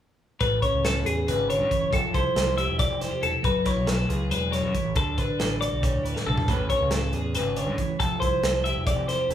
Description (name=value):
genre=math rock and midwest emo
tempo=276 BPM (eighths)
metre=7/8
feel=straight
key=A major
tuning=A4 = 439 Hz
part: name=twelve-string electric guitar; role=accompaniment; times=0.4-9.3 s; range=A2 to B4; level=-30 LUFS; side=right 2 dB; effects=none
part: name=twelve-string electric guitar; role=arpeggios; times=0.4-9.3 s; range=G#4 to E5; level=-26 LUFS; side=left 2 dB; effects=none
part: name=growling fingered electric bass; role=bass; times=0.4-9.3 s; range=E1 to A2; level=-30 LUFS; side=equal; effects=overdrive
part: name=modern studio drum kit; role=drums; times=0.4-9.3 s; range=hi-hat, kick drum, snare drum, toms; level=-28 LUFS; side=equal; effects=none
room=wet large studio reverb, RT60 0.9 s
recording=band playing live in one room, small room ambience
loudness=-22 LUFS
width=side -10 dB against mid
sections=0.4-9.3 A section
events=drum fill 6.1-6.5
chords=0.4 Amaj9; 1.9 Fmaj9; 3.4 F#m11; 5.0 D6; 6.5 Amaj9; 8.0 Fmaj9